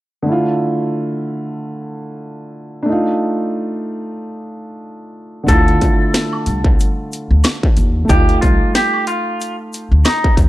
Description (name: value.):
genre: hip hop, boom-bap hip-hop.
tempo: 92 BPM.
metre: 4/4.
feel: swing 57% on 16ths.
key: unclear.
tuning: A4 = 443 Hz.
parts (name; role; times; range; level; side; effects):
dark baby grand piano; accompaniment; 0.2-10.5 s; D3 to F4; -20 LUFS; right 1 dB; cassette tape, high-pass filter, low-pass filter.
clean electric guitar; melody; 5.5-10.3 s; Eb4 to A4; -19 LUFS; equal; high-pass filter, low-pass filter.
upright bass; bass; 5.5-10.5 s; C2 to Eb2; -15 LUFS; equal; none.
techno drum kit; drums; 5.5-10.5 s; hi-hat, kick drum, snare drum; -14 LUFS; equal; distortion.
tube shaker and woodblock; percussion; 5.5-10.5 s; none; -30 LUFS; equal; none.
room: small room reverb.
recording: dry, gritty hardware recording, cassette tape.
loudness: -14 LUFS.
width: side -16 dB against mid.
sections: 0.3-5.5 A section; 5.5-10.5 B section.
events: none.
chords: 0.3 Dmadd9; 2.9 F7; 5.5 Dmadd9; 8.1 F7.